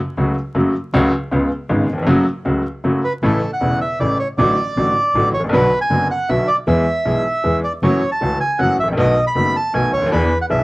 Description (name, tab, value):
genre	tango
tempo	157 BPM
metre	3/4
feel	rubato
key	F# harmonic minor, A major from 3.2 s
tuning	A4 = 439 Hz
part	bright upright piano	accompaniment	0.2-10.6 s	E1 to G#4	-18 LUFS	left 1 dB	none
part	dark double bass	bass	0.2-10.6 s	E1 to E2	-22 LUFS	equal	none
part	bandoneon	melody	3.0-10.6 s	A4 to B5	-18 LUFS	right 1 dB	cassette tape
room	wet booth ambience, RT60 0.2 s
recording	home recording on cassette, vinyl crackle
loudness	-15 LUFS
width	side -22 dB against mid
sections	0.0-3.2 A section; 3.2-10.6 B section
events	none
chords	0.0 F#m; 0.9 F#m/C#; 1.3 C#7; 2.1 F#m; 3.2 A; 4.4 D/A; 5.5 Bm; 6.7 E; 7.8 F#m7; 9.0 B7; 10.1 E7